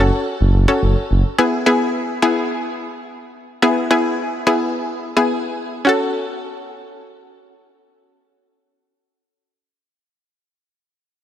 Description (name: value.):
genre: pop.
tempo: 107 BPM.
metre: 4/4.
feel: straight.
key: F# minor.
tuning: A4 = 444 Hz.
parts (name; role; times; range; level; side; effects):
analog pluck; accompaniment; 0.0-9.1 s; B3 to A4; -17 LUFS; left 1 dB; chorus.
smooth synth bass; bass; 0.0-1.2 s; F#1; -14 LUFS; equal; none.
room: moderate plate reverb, RT60 3.0 s.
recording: dense, heavily limited modern master.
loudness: -16 LUFS.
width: side -10 dB against mid.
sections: 0.0-5.9 A section; 5.9-8.1 B section.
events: none.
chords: 0.0 F#m; 1.4 E; 5.9 F#m.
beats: 0.26 0.82 | 1.38 1.94 2.50 3.06 | 3.63 4.19 4.75 5.31 | 5.87 6.43 6.99 7.55.